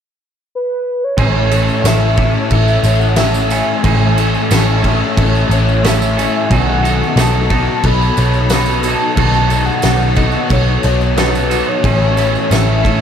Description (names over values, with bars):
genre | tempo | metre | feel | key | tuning
rock, shoegaze and dream pop | 90 BPM | 4/4 | straight | A lydian | A4 = 439 Hz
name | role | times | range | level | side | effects
warm velvety synth lead | melody | 0.6-13.0 s | B4 to B5 | -20 LUFS | equal | chorus, analog delay
electric guitar through a small old amp | arpeggios | 1.2-13.0 s | F#4 to G#5 | -25 LUFS | left 1 dB | lush chorus, analog delay
crunchy overdriven guitar | riff | 1.2-13.0 s | A2 to A4 | -20 LUFS | right 7 dB | reverse reverb
overdriven semi-hollow guitar | riff | 1.2-13.0 s | A2 to A4 | -19 LUFS | left 8 dB | ensemble chorus
vintage muted picked electric bass | bass | 1.2-13.0 s | A1 to B1 | -15 LUFS | equal | none
loose indie drum kit | drums | 1.2-13.0 s | crash cymbal, kick drum, snare drum | -18 LUFS | right 1 dB | none
tambourine | percussion | 1.2-12.7 s | none | -32 LUFS | right 7 dB | none
room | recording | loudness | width
moderate huge ambient reverb, RT60 5.2 s | dreamy mix soaked in reverb | -11 LUFS | side -8 dB against mid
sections
0.0-1.2 A section; 1.2-13.0 B section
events
none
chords
0.0 N.C.; 1.2 Amaj7; 6.5 B9; 11.8 Amaj7